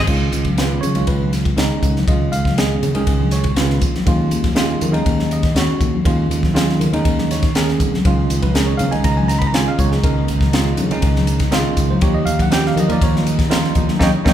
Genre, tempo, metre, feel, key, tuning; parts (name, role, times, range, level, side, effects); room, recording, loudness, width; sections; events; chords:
electric jazz fusion; 121 BPM; 4/4; straight; A4 = 439 Hz
bell-like tine electric piano; accompaniment; 0.0-14.3 s; D#3 to B5; -20 LUFS; right 3 dB; fast stereo tremolo
fingered electric bass; bass; 0.0-14.3 s; A#1 to D#3; -19 LUFS; equal
crisp fusion drum kit; drums; 0.1-14.3 s; crash cymbal, hi-hat, kick drum, ride cymbal, snare drum; -19 LUFS; left 1 dB
congas; percussion; 0.5-14.3 s; -24 LUFS; left 2 dB
warm studio string section; sustained chords; 8.1-14.3 s; C#3 to D#4; -30 LUFS; left 2 dB
moderate large studio reverb, RT60 1.1 s; band playing live in one room; -14 LUFS; side -10 dB against mid
0.1-14.3 A section
band accent 14.0-14.3
0.1 C#add9; 4.1 D#7sus2; 8.1 C#13; 12.0 D#9